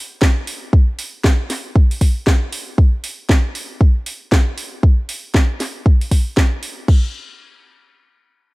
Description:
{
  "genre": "deep house",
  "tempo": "117 BPM",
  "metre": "4/4",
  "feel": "swing 61% on 16ths",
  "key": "none",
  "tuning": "none",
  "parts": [
    { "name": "electronic kick drum", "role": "drums", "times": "0.2-7.0 s", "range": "none", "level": "-12 LUFS", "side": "equal", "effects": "none" },
    { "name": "house drum kit", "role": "drums", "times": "0.2-7.0 s", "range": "crash cymbal, hi-hat, snare drum", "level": "-22 LUFS", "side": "equal", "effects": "none" }
  ],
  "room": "little or no reverb",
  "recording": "none",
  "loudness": "-15 LUFS",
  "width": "side -23 dB against mid",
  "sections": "0.0-6.9 A section; 6.9-8.5 B section",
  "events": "none",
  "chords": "none"
}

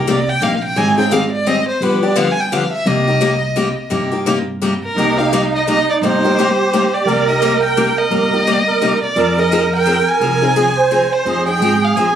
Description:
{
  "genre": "acoustic string swing (jazz manouche)",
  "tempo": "172 BPM",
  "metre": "3/4",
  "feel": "swing 61% on 8ths",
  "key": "C minor",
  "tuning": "A4 = 440 Hz",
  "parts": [
    { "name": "warm violin", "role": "melody", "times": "0.0-12.2 s", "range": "Bb4 to Ab5", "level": "-18 LUFS", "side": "equal", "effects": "none" },
    { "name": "picked steel-string acoustic guitar", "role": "accompaniment", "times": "0.0-12.1 s", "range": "C3 to Ab4", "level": "-18 LUFS", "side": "left 4 dB", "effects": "none" },
    { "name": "upright bass", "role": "bass", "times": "0.1-12.2 s", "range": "G1 to G2", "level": "-21 LUFS", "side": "right 2 dB", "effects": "none" },
    { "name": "musette accordion", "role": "second line", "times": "4.9-12.2 s", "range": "Eb4 to C5", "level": "-17 LUFS", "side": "right 5 dB", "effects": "none" }
  ],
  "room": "moderate studio reverb, RT60 0.5 s",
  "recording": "recorded on a phone in the room, club reverb, compression",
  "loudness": "-13 LUFS",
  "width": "side -9 dB against mid",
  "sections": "0.0-5.0 A section; 5.0-12.2 B section",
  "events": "violin solo 0.0-5.0",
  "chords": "0.0 Cm7; 0.8 Abmaj7; 1.8 G7; 2.9 Cm7; 9.2 Fm7"
}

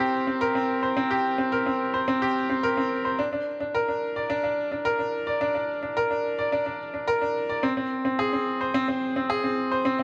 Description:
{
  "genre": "electronica",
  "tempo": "108 BPM",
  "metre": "4/4",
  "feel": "straight",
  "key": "unclear",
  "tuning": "A4 = 440 Hz",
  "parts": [
    { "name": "bright upright piano", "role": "solo", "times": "0.0-10.0 s", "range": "C4 to D5", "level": "-26 LUFS", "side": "equal", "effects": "none" }
  ],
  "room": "moderate echo chamber reverb, RT60 1.9 s",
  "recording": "none",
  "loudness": "-26 LUFS",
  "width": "mono",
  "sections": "0.0-10.0 A section",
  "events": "none",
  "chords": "none"
}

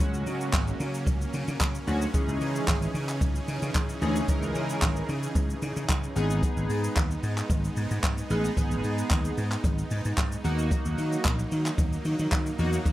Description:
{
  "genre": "dance-pop",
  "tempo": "112 BPM",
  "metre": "4/4",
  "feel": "straight",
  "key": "G# minor",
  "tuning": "A4 = 441 Hz",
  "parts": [
    { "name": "chorused polysynth", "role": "accompaniment", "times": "0.0-12.9 s", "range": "E3 to A#4", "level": "-32 LUFS", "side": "equal", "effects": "sidechain pumping" },
    { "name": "supersaw pad", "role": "sustained chords", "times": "0.0-12.9 s", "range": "C#3 to G#4", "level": "-34 LUFS", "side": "right 1 dB", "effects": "sidechain pumping" },
    { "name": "vintage slap bass", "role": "bass", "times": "0.0-12.9 s", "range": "G#1 to D#3", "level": "-29 LUFS", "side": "equal", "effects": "sidechain pumping" },
    { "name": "jazz brush drum kit", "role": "drums", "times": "0.0-12.9 s", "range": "handclaps, hi-hat, kick drum, shaker", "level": "-28 LUFS", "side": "equal", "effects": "none" }
  ],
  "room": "small room ambience",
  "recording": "rough home demo mix",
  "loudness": "-25 LUFS",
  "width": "side -15 dB against mid",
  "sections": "0.0-12.9 A section",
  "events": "none",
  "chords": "0.0 C#sus4; 2.1 C#madd9; 6.2 G#m; 10.4 D#m"
}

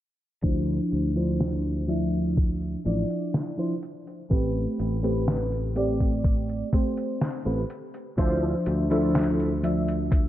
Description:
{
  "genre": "vaporwave",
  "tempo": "62 BPM",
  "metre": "4/4",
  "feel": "straight",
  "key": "D dorian",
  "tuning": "A4 = 440 Hz",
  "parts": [
    { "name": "mellow FM electric piano", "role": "accompaniment", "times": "0.4-10.3 s", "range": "F3 to E5", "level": "-27 LUFS", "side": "equal", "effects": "lush chorus, cassette tape, analog delay" },
    { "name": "sustaining fretless electric bass", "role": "bass", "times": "0.4-10.3 s", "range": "A1 to D2", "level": "-28 LUFS", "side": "equal", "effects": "analog chorus" },
    { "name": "detuned 8-bit digital drum machine", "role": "drums", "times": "0.4-10.3 s", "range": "hi-hat, snare drum", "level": "-30 LUFS", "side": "equal", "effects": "none" },
    { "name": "electronic kick drum", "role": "drums", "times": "0.4-10.3 s", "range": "none", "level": "-23 LUFS", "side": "equal", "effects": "none" },
    { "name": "mellow electric guitar", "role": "riff", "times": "8.2-10.2 s", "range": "E4 to C5", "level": "-31 LUFS", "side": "left 1 dB", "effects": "ensemble chorus, analog delay" }
  ],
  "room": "light reverb",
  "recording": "low-pass filter",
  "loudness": "-23 LUFS",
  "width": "side -13 dB against mid",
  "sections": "0.4-10.3 A section",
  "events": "filter sweep 0.4-10.3",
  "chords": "0.4 Dm9; 4.3 Am9; 8.2 Dm9"
}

